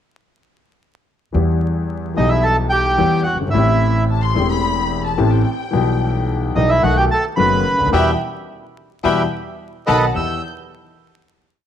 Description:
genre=tango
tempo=109 BPM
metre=4/4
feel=rubato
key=E harmonic minor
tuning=A4 = 439 Hz
part: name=clear concert grand piano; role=accompaniment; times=1.3-10.4 s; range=E1 to G4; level=-20 LUFS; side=left 5 dB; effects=none
part: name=upright bass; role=bass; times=1.3-10.4 s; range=E1 to E2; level=-20 LUFS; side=right 1 dB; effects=none
part: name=bandoneon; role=melody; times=2.2-10.4 s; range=D#4 to E6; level=-18 LUFS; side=right 2 dB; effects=none
part: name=warm studio violin section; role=second line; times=4.1-10.4 s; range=E5 to G6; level=-23 LUFS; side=left 5 dB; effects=none
room=moderate echo chamber reverb, RT60 1.4 s, small room ambience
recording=1960s-style stereo, vinyl crackle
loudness=-15 LUFS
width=side -10 dB against mid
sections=1.3-10.2 A section; 10.2-11.7 final chord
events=band accent 7.9-10.2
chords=1.3 Em; 3.5 Am7; 5.7 Em/B; 6.8 B7; 7.9 Em; 9.6 B7; 10.2 Em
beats=| 1.34 1.89 2.44 2.99 | 3.54 4.09 4.64 5.19 | 5.74 6.29 6.84 7.39 | 7.94 8.49 9.05 9.60 | 10.16

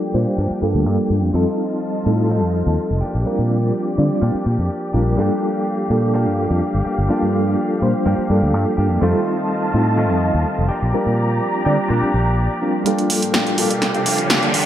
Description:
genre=filtered disco house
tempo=125 BPM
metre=4/4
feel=straight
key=G minor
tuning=A4 = 442 Hz
part: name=reed electric piano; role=accompaniment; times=0.0-14.7 s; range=G3 to D5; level=-20 LUFS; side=equal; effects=fast tremolo, phaser, low-pass filter
part: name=clear studio string section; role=sustained chords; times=0.0-14.7 s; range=F4 to Bb5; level=-27 LUFS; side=equal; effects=low-pass filter
part: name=direct-recorded clean electric guitar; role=riff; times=0.0-14.7 s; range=Eb3 to A4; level=-25 LUFS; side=equal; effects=low-pass filter
part: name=fingered electric bass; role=bass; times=0.1-14.6 s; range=F1 to D3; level=-19 LUFS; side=equal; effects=high-pass filter, low-pass filter
part: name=punchy analog drum machine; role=drums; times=12.9-14.6 s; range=hi-hat, snare drum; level=-19 LUFS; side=right 1 dB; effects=overdrive, gated reverb
part: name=riser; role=sound effects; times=13.3-14.7 s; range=none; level=-25 LUFS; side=right 1 dB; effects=none
room=moderate lush hall reverb, RT60 2.5 s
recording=bright 1980s-style digital production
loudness=-16 LUFS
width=side -11 dB against mid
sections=0.0-12.9 A section; 12.9-14.7 B section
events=filter sweep 0.0-12.9, 12.9-14.7; build-up 12.9-14.7; riser 13.3-14.7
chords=0.0 Gm7; 1.3 F7; 3.0 Bb6; 5.2 Gm7; 9.0 F7; 10.7 Bb6; 12.9 Gm7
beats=0.38 0.86 | 1.34 1.82 2.30 2.78 | 3.26 3.74 4.22 4.70 | 5.18 5.66 6.14 6.62 | 7.10 7.58 8.06 8.54 | 9.02 9.50 9.98 10.46 | 10.94 11.42 11.90 12.38 | 12.86 13.34 13.82 14.30

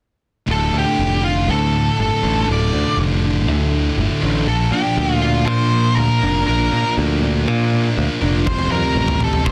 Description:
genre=quiet-loud alternative rock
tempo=120 BPM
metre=4/4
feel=straight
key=D minor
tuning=A4 = 440 Hz
part: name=octave-fuzz lead guitar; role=melody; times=0.5-9.5 s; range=F4 to D5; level=-23 LUFS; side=equal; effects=distortion, slapback echo
part: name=fingerpicked steel-string acoustic guitar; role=arpeggios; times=0.5-9.5 s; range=D2 to F4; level=-27 LUFS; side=equal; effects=none
part: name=thick fuzz guitar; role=riff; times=0.5-9.5 s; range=D2 to Bb4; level=-23 LUFS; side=equal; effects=distortion
part: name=modern bright picked electric bass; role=bass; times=0.5-9.5 s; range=D1 to Bb2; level=-22 LUFS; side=equal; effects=none
part: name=big rock drum kit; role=drums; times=8.5-9.5 s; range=kick drum, toms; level=-23 LUFS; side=equal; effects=none
room=moderate large studio reverb, RT60 1.4 s, small room ambience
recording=dense, heavily limited modern master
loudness=-18 LUFS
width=mono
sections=0.5-9.5 A section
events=none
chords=0.5 Dm; 4.5 Bb; 8.5 Fadd9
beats=| 0.49 0.99 1.49 1.99 | 2.49 2.98 3.48 3.98 | 4.48 4.98 5.48 5.97 | 6.47 6.97 7.47 7.97 | 8.47 8.97 9.47

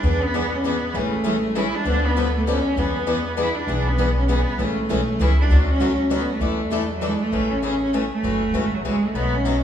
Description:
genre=acoustic string swing (jazz manouche)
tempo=198 BPM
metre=3/4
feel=swing 59% on 8ths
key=A major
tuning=A4 = 440 Hz
part: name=rich cello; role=melody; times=0.0-9.6 s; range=F#3 to E4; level=-23 LUFS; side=right 1 dB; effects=none
part: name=picked steel-string acoustic guitar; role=accompaniment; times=0.0-7.1 s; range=D3 to B4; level=-28 LUFS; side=right 3 dB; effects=none
part: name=picked swing-style acoustic guitar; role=accompaniment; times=0.0-9.6 s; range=B2 to A4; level=-26 LUFS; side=left 6 dB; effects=none
part: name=upright bass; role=bass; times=0.0-9.6 s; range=F#1 to E2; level=-23 LUFS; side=equal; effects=none
room=wet recital hall reverb, RT60 1.7 s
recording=recorded in a church or concert hall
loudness=-19 LUFS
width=side -9 dB against mid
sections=0.0-7.3 A section; 7.3-9.6 B section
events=none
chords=0.0 E7; 0.9 Amaj7; 1.9 Dm6; 2.8 E7; 4.6 Amaj7; 5.5 Dmaj7; 6.4 E7sus4; 7.3 Amaj7; 8.2 F#m7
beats=| 0.03 0.34 0.64 | 0.94 1.25 1.55 | 1.85 2.16 2.46 | 2.76 3.07 3.37 | 3.67 3.98 4.28 | 4.58 4.89 5.19 | 5.49 5.80 6.10 | 6.41 6.71 7.01 | 7.32 7.62 7.93 | 8.23 8.53 8.84 | 9.14 9.45

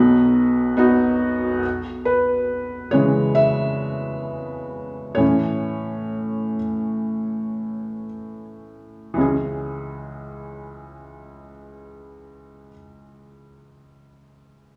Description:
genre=pop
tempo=55-70 BPM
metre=4/4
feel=straight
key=C# minor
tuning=A4 = 440 Hz
part: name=clear concert grand piano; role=melody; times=0.0-0.7 s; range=B4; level=-43 LUFS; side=equal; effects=none
part: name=felt-muted upright piano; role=accompaniment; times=0.0-14.8 s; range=B1 to E5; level=-22 LUFS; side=equal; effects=none
room=wet stone room reverb, RT60 1.2 s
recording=band playing live in one room, small room ambience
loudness=-22 LUFS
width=mono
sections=0.0-1.6 A section; 1.6-9.2 B section; 9.2-13.6 C section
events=slowing down 1.6-9.2; felt piano solo 1.6-9.2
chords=0.0 B; 1.6 C#m; 5.2 A; 9.2 C#m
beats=0.78 | 1.64 2.50 3.37 4.26 | 5.17 6.11 7.08 8.10 | 9.17 10.27 11.37 12.47

